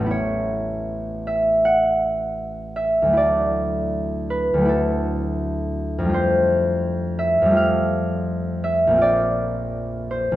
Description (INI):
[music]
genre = classical, solo harp piece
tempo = 75-85 BPM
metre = 4/4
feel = rubato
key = unclear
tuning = A4 = 440 Hz
[part]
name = concert harp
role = solo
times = 0.0-10.4 s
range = A1 to F#5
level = -19 LUFS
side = equal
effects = none
[sound]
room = wet recital hall reverb, RT60 1.6 s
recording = none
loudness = -18 LUFS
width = side -14 dB against mid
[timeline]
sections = 0.1-10.4 A section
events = none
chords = 0.1 Aadd9; 3.2 Dadd9; 6.1 Fadd9; 9.0 Bbadd9